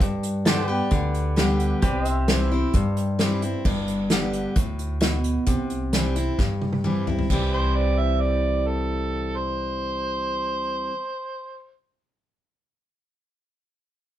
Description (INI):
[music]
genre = honky-tonk and classic country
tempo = 132 BPM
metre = 4/4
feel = straight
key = C major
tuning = A4 = 441 Hz
[part]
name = picked steel-string acoustic guitar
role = accompaniment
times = 0.0-10.9 s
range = G2 to G4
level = -26 LUFS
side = left 1 dB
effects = none
[part]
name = upright bass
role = bass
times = 0.0-10.9 s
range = G1 to G2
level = -27 LUFS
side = equal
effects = none
[part]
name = unplugged drum kit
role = drums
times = 0.0-7.4 s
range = crash cymbal, hi-hat, kick drum, snare drum, toms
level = -24 LUFS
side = equal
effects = none
[part]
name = pedal steel guitar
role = sustained chords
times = 0.5-3.6 s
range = G4 to E5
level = -30 LUFS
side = right 1 dB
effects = none
[part]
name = overdriven harmonica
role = second line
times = 7.5-11.7 s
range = A4 to E5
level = -27 LUFS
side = right 3 dB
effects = none
[sound]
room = moderate studio reverb, RT60 0.6 s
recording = band playing live in one room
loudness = -21 LUFS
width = side -12 dB against mid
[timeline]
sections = 0.0-3.6 A section; 3.6-7.3 B section; 7.3-11.0 C section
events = drum fill 6.4-7.3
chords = 0.0 G; 1.8 C; 3.6 G; 5.5 C